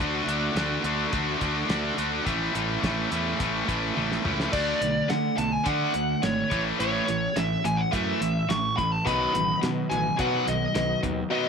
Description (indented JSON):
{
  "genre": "classic rock",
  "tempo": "106 BPM",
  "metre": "4/4",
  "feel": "straight",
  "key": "unclear",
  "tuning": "A4 = 444 Hz",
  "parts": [
    { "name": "cranked stack guitar", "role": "riff", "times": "0.0-11.5 s", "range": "A2 to F#4", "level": "-29 LUFS", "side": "right 10 dB", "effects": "overdrive" },
    { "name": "tight distorted guitar", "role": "riff", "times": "0.0-11.5 s", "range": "A2 to D4", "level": "-29 LUFS", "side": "left 11 dB", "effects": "distortion" },
    { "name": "fuzz fingered electric bass", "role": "bass", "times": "0.0-11.2 s", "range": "G#1 to D3", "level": "-32 LUFS", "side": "equal", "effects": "overdrive" },
    { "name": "cloth-damped thuddy drum kit", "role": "drums", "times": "0.0-11.2 s", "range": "crash cymbal, hi-hat, kick drum, snare drum, toms", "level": "-33 LUFS", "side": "equal", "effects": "none" },
    { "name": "smooth overdriven lead guitar", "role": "melody", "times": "4.5-11.5 s", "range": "C#5 to C#6", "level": "-27 LUFS", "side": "equal", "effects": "none" },
    { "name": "bright tonewheel organ", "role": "sustained chords", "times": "9.0-11.5 s", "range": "B3 to D#5", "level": "-39 LUFS", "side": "right 1 dB", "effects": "chorus vibrato, slow rotary speaker" },
    { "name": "mellow reed electric piano", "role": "accompaniment", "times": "9.1-11.5 s", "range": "F#4 to F#5", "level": "-35 LUFS", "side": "left 11 dB", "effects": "none" }
  ],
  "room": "small room ambience",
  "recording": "1960s-style stereo with parts hard left and right",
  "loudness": "-23 LUFS",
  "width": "side -6 dB against mid",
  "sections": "0.0-4.5 A section; 4.5-11.5 B section",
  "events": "drum fill 4.0-4.5",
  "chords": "0.0 D; 2.3 A; 4.5 D; 6.5 A; 9.1 B"
}